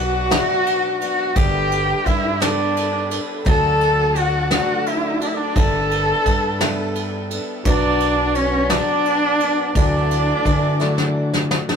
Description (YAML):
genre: indie folk with a building arrangement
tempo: 57 BPM (dotted quarters)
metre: 6/8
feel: straight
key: D major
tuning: A4 = 440 Hz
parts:
  - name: warm cello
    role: melody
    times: 0.0-11.1 s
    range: C#4 to A4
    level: -20 LUFS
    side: left 1 dB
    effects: tape echo
  - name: clear trumpet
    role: second line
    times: 0.0-11.1 s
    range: C#5 to A5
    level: -25 LUFS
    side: right 3 dB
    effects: none
  - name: picked twelve-string acoustic guitar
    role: accompaniment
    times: 0.0-11.8 s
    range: B2 to A4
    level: -28 LUFS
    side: left 2 dB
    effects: none
  - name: warm upright piano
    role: accompaniment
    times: 0.0-11.8 s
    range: G1 to E5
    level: -31 LUFS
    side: equal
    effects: none
  - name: warm studio string section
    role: sustained chords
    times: 0.0-11.8 s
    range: A4 to D6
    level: -34 LUFS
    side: left 1 dB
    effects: none
  - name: fingered electric bass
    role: bass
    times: 0.0-11.6 s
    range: G1 to D3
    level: -24 LUFS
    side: left 1 dB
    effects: none
  - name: soft brush drum kit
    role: drums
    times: 0.3-11.8 s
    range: kick drum, ride cymbal, snare drum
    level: -23 LUFS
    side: equal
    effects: none
room: moderate booth ambience, RT60 0.3 s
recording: rough rehearsal-room recording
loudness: -16 LUFS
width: side -6 dB against mid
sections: 0.0-11.8 A section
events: drum fill 10.8-11.8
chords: 0.0 Bm; 1.4 Gadd9; 3.5 D; 5.6 Gadd9; 7.7 Bm; 9.8 Dadd9